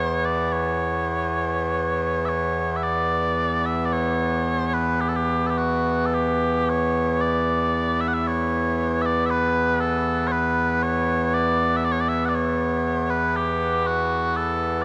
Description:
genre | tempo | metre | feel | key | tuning
celtic folk | 50-60 BPM | 4/4 | rubato | E dorian | A4 = 439 Hz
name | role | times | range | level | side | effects
mellow small bagpipes | solo | 0.0-14.8 s | E2 to F#5 | -23 LUFS | equal | none
room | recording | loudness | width
wet cathedral reverb, RT60 6.2 s | none | -23 LUFS | mono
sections
0.0-2.8 A section; 2.8-14.8 B section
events
none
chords
none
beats
0.54 1.70 | 2.85 3.94 5.02 6.13 | 7.22 8.26 9.29 10.31 | 11.34 12.35 13.35 14.36

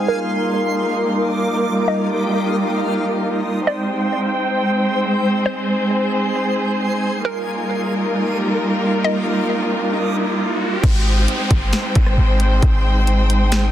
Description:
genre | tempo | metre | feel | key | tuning
hip hop, atmospheric cloud-rap | 134 BPM | 4/4 | half-time | Ab lydian | A4 = 440 Hz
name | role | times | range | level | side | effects
dark chamber string section | sustained chords | 0.0-13.7 s | G3 to G5 | -18 LUFS | equal | sidechain pumping, low-pass filter
downlifter and riser | sound effects | 0.0-0.1, 8.6-13.7 s | none | -27 LUFS | equal | none
backwards swelling texture | texture | 0.0-13.7 s | G4 to Eb6 | -28 LUFS | left 1 dB | built-in reverb
hollow square pluck | melody | 0.1-9.5 s | Bb4 to Eb5 | -26 LUFS | equal | chorus, low-pass filter, tape echo
clean 808-style bass | bass | 10.8-13.7 s | G1 to Ab1 | -16 LUFS | equal | none
trap drum kit | drums | 10.8-13.6 s | crash cymbal, hi-hat, kick drum, rim click, snare drum | -19 LUFS | equal | none
room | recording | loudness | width
digital ambience | dense, heavily limited modern master | -16 LUFS | side -11 dB against mid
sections
0.0-10.8 A section; 10.8-13.7 B section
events
filter sweep 0.0-10.8; riser 8.6-10.8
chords
0.1 Ebmaj9; 3.7 Abmaj7; 7.3 Ebmaj9; 10.8 Abmaj7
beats
| 0.09 0.54 0.98 1.43 | 1.88 2.33 2.78 3.22 | 3.67 4.12 4.57 5.01 | 5.46 5.91 6.36 6.81 | 7.25 7.70 8.15 8.60 | 9.04 9.49 9.94 10.39 | 10.84 11.28 11.73 12.18 | 12.63 13.07 13.52

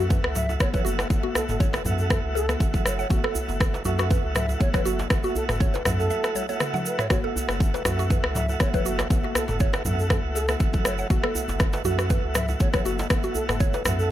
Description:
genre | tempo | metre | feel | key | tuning
afro house | 120 BPM | 4/4 | swing 54% on 16ths | F# minor | A4 = 440 Hz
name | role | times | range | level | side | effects
mallet-like synth pluck | arpeggios | 0.0-13.8 s | F#4 to F#5 | -32 LUFS | equal | chorus, phaser, sidechain pumping, tape echo
tonewheel organ | stabs | 0.0-14.1 s | A3 to F#4 | -31 LUFS | right 4 dB | fast rotary speaker, sidechain pumping, tape echo
round analog bass | bass | 0.0-14.1 s | F#1 to F#2 | -29 LUFS | equal | sidechain pumping
electronic kick drum | drums | 0.1-13.7 s | none | -23 LUFS | equal | studio reverb
djembe | percussion | 0.1-14.0 s | none | -36 LUFS | right 1 dB | none
egg shaker | percussion | 0.1-14.1 s | none | -37 LUFS | right 5 dB | none
afro-pop drum kit | drums | 0.2-14.0 s | rim click, toms | -28 LUFS | left 1 dB | studio reverb
mellow hollow jazz flute | melody | 0.4-14.1 s | A4 to E5 | -33 LUFS | right 1 dB | tape echo
congas | percussion | 0.4-14.0 s | none | -34 LUFS | left 4 dB | none
room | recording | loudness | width
small room ambience | none | -21 LUFS | side -12 dB against mid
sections
0.0-14.1 A section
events
drum fill 6.4-7.1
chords
0.0 F#m7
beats
0.10 0.60 | 1.10 1.60 2.10 2.60 | 3.10 3.60 4.10 4.60 | 5.10 5.60 6.10 6.60 | 7.10 7.60 8.10 8.60 | 9.10 9.60 10.10 10.60 | 11.10 11.60 12.10 12.60 | 13.10 13.60 14.10

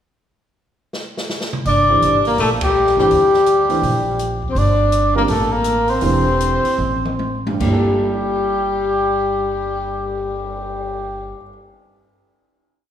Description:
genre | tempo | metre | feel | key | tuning
modal jazz | 142-167 BPM | 4/4 | swing 64% on 8ths | G dorian | A4 = 440 Hz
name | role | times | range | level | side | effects
open jazz drum kit | drums | 0.9-10.9 s | crash cymbal, cymbal swell, hi-hat, kick drum, ride cymbal, snare drum, toms | -28 LUFS | equal | none
trumpet with cup mute | melody | 1.7-11.3 s | G4 to D5 | -19 LUFS | equal | none
clear tenor saxophone | second line | 1.7-11.3 s | G3 to D4 | -20 LUFS | left 4 dB | none
upright bass | bass | 1.7-11.3 s | E1 to D2 | -23 LUFS | right 1 dB | none
warm baby grand piano | accompaniment | 1.9-11.5 s | G2 to C5 | -24 LUFS | right 4 dB | none
room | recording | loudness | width
wet recital hall reverb, RT60 1.7 s | recorded in a church or concert hall | -15 LUFS | side -9 dB against mid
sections
0.2-1.7 pickup bar; 1.7-7.6 A section; 7.6-11.0 final chord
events
drum fill 0.9-1.7, 6.8-7.6; band accent 2.6; slowing down 4.5-7.6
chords
0.2 N.C.; 1.7 Gm69; 4.5 Am/G; 7.6 Gm69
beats
| 0.22 0.58 0.94 1.31 | 1.67 2.03 2.39 2.75 | 3.11 3.47 3.83 4.19 | 4.55 4.91 5.27 5.64 | 6.01 6.39 6.78 7.18 | 7.60 8.02 8.44 8.86 | 9.28 9.71 10.13 10.55

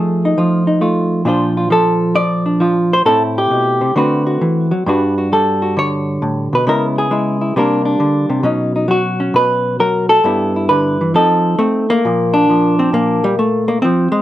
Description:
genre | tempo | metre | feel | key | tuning
solo jazz | 134 BPM | 4/4 | swing 67% on 8ths | unclear | A4 = 440 Hz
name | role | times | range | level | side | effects
hollow-body jazz guitar | solo | 0.0-14.2 s | G2 to D5 | -12 LUFS | equal | none
room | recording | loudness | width
light reverb | none | -12 LUFS | side -13 dB against mid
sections
0.0-12.0 A section; 12.0-14.2 B section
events
none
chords
0.0 F7#9; 1.3 A#maj9; 3.1 Am7; 4.0 D13; 4.9 Gmaj9; 6.7 C#m7; 7.6 Csus2; 8.4 Badd9; 10.2 G69; 11.1 F7; 12.0 Bbmaj7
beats
0.36 0.81 | 1.26 1.71 2.16 2.61 | 3.06 3.51 3.96 4.41 | 4.86 5.31 5.76 6.21 | 6.66 7.10 7.55 8.00 | 8.45 8.90 9.35 9.79 | 10.24 10.69 11.14 11.59 | 12.03 12.48 12.93 13.38 | 13.82

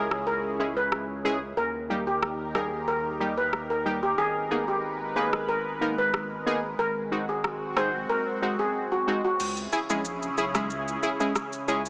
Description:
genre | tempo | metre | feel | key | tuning
dancehall | 92 BPM | 4/4 | straight | G# harmonic minor | A4 = 440 Hz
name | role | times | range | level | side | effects
steel pan | melody | 0.0-9.3 s | F#4 to B#4 | -28 LUFS | equal | digital delay
synth brass stab | accompaniment | 0.0-11.8 s | G3 to B4 | -28 LUFS | equal | chorus
lush unison pad | sustained chords | 0.0-11.9 s | C#3 to B4 | -32 LUFS | equal | chorus, phaser
saturated sub bass | bass | 0.0-11.9 s | G#1 to D#2 | -39 LUFS | equal | none
island pop drum kit | drums | 0.1-11.9 s | crash cymbal, rim click, shaker | -30 LUFS | equal | overdrive
room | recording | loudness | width
moderate plate reverb, RT60 3.5 s | small speaker sound | -25 LUFS | side -28 dB against mid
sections
0.0-9.4 A section; 9.4-11.9 B section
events
kick muted 9.4-11.9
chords
0.0 C#m; 1.6 D#; 4.2 G#madd9; 6.8 G#7; 9.4 C#m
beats
0.27 0.92 | 1.57 2.22 2.88 3.53 | 4.18 4.83 5.49 6.14 | 6.79 7.44 8.09 8.75 | 9.40 10.05 10.70 11.35

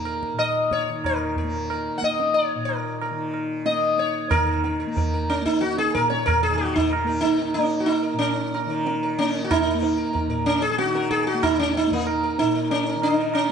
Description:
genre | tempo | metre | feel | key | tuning
indian classical, Hindustani | 92 BPM | 4/4 | straight | unclear | A4 = 440 Hz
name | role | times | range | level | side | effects
sitar | melody | 0.0-13.5 s | Bb3 to Gb5 | -22 LUFS | equal | none
tanpura | drone | 0.0-13.5 s | Bb2 to Bb3 | -29 LUFS | left 1 dB | none
tabla | percussion | 0.1-13.5 s | none | -28 LUFS | right 3 dB | none
room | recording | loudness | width
moderate scoring stage reverb, RT60 2.0 s | dark, warm production, nothing above 10.4 kHz | -20 LUFS | side -7 dB against mid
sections
0.0-4.3 A section; 4.3-13.5 B section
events
speeding up 0.0-13.5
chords
none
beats
0.38 1.03 | 1.69 2.35 3.01 3.66 | 4.32 4.97 5.62 6.27 | 6.92 7.57 8.21 8.86 | 9.50 10.14 10.79 11.43 | 12.06 12.70 13.34

